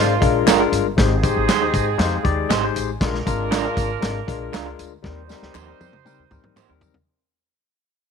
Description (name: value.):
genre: uptempo 1960s-style soul.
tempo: 118 BPM.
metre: 4/4.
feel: straight.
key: unclear.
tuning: A4 = 439 Hz.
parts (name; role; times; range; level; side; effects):
warm horn section; second line; 0.0-6.8 s; Bb3 to C5; -26 LUFS; right 12 dB; none.
barky tine electric piano; accompaniment; 0.0-7.0 s; G3 to Ab5; -23 LUFS; left 14 dB; overdrive, phaser.
upright bass; bass; 0.0-7.0 s; Gb1 to Eb3; -25 LUFS; equal; none.
warm soul drum kit; drums; 0.2-7.1 s; hi-hat, kick drum, snare drum, toms; -22 LUFS; equal; none.
tambourine and handclaps; percussion; 0.2-6.9 s; none; -30 LUFS; left 3 dB; none.
electric guitar through a small old amp; stabs; 0.5-6.7 s; Ab3 to C5; -22 LUFS; right 13 dB; lush chorus.
room: light reverb, small room ambience.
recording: 1960s-style stereo with parts hard left and right.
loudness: -17 LUFS.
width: side -6 dB against mid.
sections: 0.0-7.1 A section.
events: fade-out 0.0-7.1; tine electric piano fill 1.5-3.0; drum fill 5.0-7.1.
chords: 0.0 Bb7; 1.0 Abmaj7; 3.0 Bb7; 5.0 Eb6.